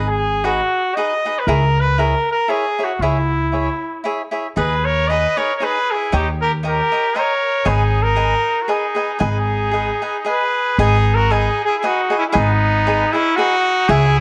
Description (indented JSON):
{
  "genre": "mexican folk, mariachi",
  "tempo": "116 BPM",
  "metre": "3/4",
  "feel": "swing 54% on 8ths, rubato",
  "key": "G# minor",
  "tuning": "A4 = 440 Hz",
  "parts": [
    { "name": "bright trumpet", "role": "melody", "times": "0.0-14.2 s", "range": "D#4 to D#5", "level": "-20 LUFS", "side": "equal", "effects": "plate reverb" },
    { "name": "cavaquinho", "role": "accompaniment", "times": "0.0-14.1 s", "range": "D#4 to A#5", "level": "-24 LUFS", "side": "equal", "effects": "plate reverb" },
    { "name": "upright bass", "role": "bass", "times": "0.0-14.2 s", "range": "G#1 to D#2", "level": "-21 LUFS", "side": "equal", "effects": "none" },
    { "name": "trumpet with straight mute", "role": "second line", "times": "4.6-14.2 s", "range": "B3 to B4", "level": "-28 LUFS", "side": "equal", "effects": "plate reverb" }
  ],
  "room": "moderate studio reverb, RT60 0.7 s",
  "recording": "cassette tape",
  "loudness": "-18 LUFS",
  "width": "mono",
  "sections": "0.0-10.8 A section; 10.8-14.2 A section",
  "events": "none",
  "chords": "0.0 G#m; 1.5 C#m; 4.6 G#m/D#; 6.1 D#7; 7.7 G#m",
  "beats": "0.42 0.94 | 1.45 1.96 2.47 | 2.99 3.50 4.03 | 4.56 5.09 5.61 | 6.12 6.63 7.14 | 7.65 8.17 8.68 | 9.20 9.73 10.26 | 10.79 11.31 11.83 | 12.35 12.87 13.38 | 13.88"
}